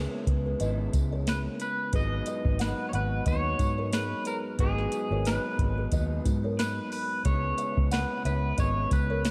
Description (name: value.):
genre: indie pop, bedroom pop.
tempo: 90 BPM.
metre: 4/4.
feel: swing 55% on 16ths.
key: G# minor.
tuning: A4 = 438 Hz.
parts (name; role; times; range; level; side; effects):
kalimba; second line; 0.0-9.3 s; G#4 to F#5; -40 LUFS; equal; ensemble chorus, slapback echo, tape echo.
electric guitar at the edge of break-up; accompaniment; 0.0-9.3 s; G#2 to E4; -37 LUFS; equal; subtle chorus, vibrato effect, slapback echo.
vintage muted fingered electric bass; bass; 0.0-9.3 s; G#1 to G#2; -32 LUFS; equal; none.
soft vintage rhythm box; drums; 0.3-9.3 s; hi-hat, kick drum, snare drum; -32 LUFS; equal; none.
tambourine; percussion; 0.6-9.3 s; none; -52 LUFS; equal; none.
electric guitar through a small old amp; melody; 1.3-9.3 s; G#4 to D#5; -35 LUFS; equal; lush chorus.
room: light reverb, digital ambience.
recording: none.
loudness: -28 LUFS.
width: mono.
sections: 0.0-9.3 A section.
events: none.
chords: 0.0 C#m7; 1.9 G#m7; 7.3 C#m7.